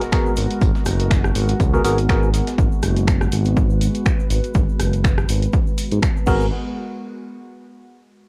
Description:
deep house; 122 BPM; 4/4; swing 55% on 16ths; G# minor; A4 = 440 Hz
warbly tape-like pad; sustained chords; 0.0-6.5 s; G#3 to B4; -29 LUFS; equal; chorus, built-in reverb, vintage 12-bit sampler grit, sidechain pumping, cassette tape
dusty soul sampler-style drum kit; drums; 0.0-2.6 s; hi-hat, snare drum, tambourine; -39 LUFS; equal
punchy analog drum machine; drums; 0.0-6.4 s; crash cymbal, finger snaps, hi-hat, rim click; -30 LUFS; equal; overdrive, cassette tape
egg shaker; percussion; 0.0-6.5 s; -43 LUFS; equal
sub drop; sound effects; 0.1-0.6 s; barely audible
percussive organ stab; stabs; 0.1-2.3, 6.3-6.5 s; B3 to A#4; -24 LUFS; equal; chorus, sidechain pumping, cassette tape, tape echo
electronic kick drum; drums; 0.1-6.4 s; -22 LUFS; equal; overdrive, cassette tape
smooth synth bass; bass; 0.4-6.5 s; F#1 to G#2; -23 LUFS; equal; sidechain pumping
little or no reverb; home recording on cassette; -19 LUFS; mono
0.0-6.5 A section; 6.5-8.3 B section
impact 0.0-0.6; filter sweep on analog synth bass 0.0-6.5; filter sweep on ambient pad 0.0-6.5
0.0 G#m9; 6.5 N.C.
0.12 | 0.61 1.11 1.60 2.09 | 2.58 3.07 3.57 4.06 | 4.55 5.04 5.53 6.03

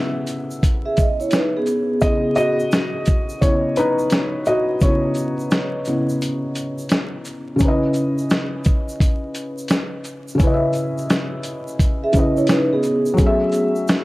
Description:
lo-fi hip hop; 86 BPM; 4/4; swing 64% on 16ths; C# minor; A4 = 440 Hz
felt-muted upright piano; accompaniment; 0.0-14.0 s; C#3 to F#5; -21 LUFS; left 1 dB; cassette tape
dusty soul sampler-style drum kit; drums; 0.3-14.0 s; hi-hat, kick drum, shaker, snare drum; -19 LUFS; equal; vintage 12-bit sampler grit
egg shaker; percussion; 0.3-14.0 s; -41 LUFS; right 1 dB
vibraphone with soft mallets; second line; 0.9-2.6, 12.0-13.7 s; B3 to E5; -20 LUFS; right 1 dB; analog delay
light reverb, small room ambience; dry, gritty hardware recording, vinyl crackle; -17 LUFS; side -19 dB against mid
0.0-7.6 A section; 7.6-14.0 B section
felt piano solo 0.0-7.6; break 6.2-7.6
0.0 C#m9; 13.2 F#m9
0.63 1.33 | 2.02 2.72 3.42 4.12 | 4.82 5.51 6.21 6.91 | 7.61 8.30 9.00 9.70 | 10.40 11.09 11.79 12.49 | 13.19 13.88

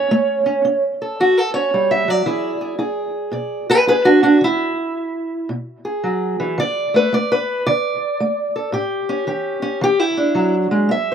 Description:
acoustic country blues, solo or duo; 111 BPM; 4/4; swing 66% on 8ths; A4 = 439 Hz
fingerpicked steel-string acoustic guitar; solo; 0.0-11.1 s; A2 to E5; -16 LUFS; right 1 dB
little or no reverb; recorded outdoors, with no room sound; -16 LUFS; side -8 dB against mid
0.0-10.9 A section
steel-string acoustic guitar solo 0.0-10.9
0.0 A7; 2.3 E7; 6.6 D5; 8.7 A7; 9.8 E7
| 0.10 0.64 1.18 1.72 | 2.26 2.80 3.34 3.88 | 4.42 4.95 5.49 6.03 | 6.57 7.11 7.65 8.20 | 8.74 9.28 9.82 10.37 | 10.91

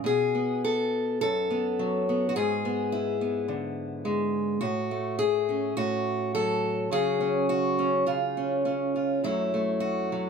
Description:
folk, solo fingerstyle acoustic guitar; 105 BPM; 4/4; straight; F# minor; A4 = 440 Hz
fingerpicked acoustic archtop guitar; solo; 0.0-10.3 s; F#2 to A4; -25 LUFS; equal
little or no reverb; close, detailed microphones; -25 LUFS; side -6 dB against mid
0.0-9.2 A section; 9.2-10.3 B section
0.1 B5; 2.4 G#dim; 4.6 F#m/A; 6.9 C#sus4; 8.1 C#; 9.2 F#m7
| 0.05 0.63 1.21 1.78 | 2.35 2.92 3.49 4.06 | 4.63 5.20 5.76 6.34 | 6.91 7.49 8.06 8.65 | 9.24 9.81

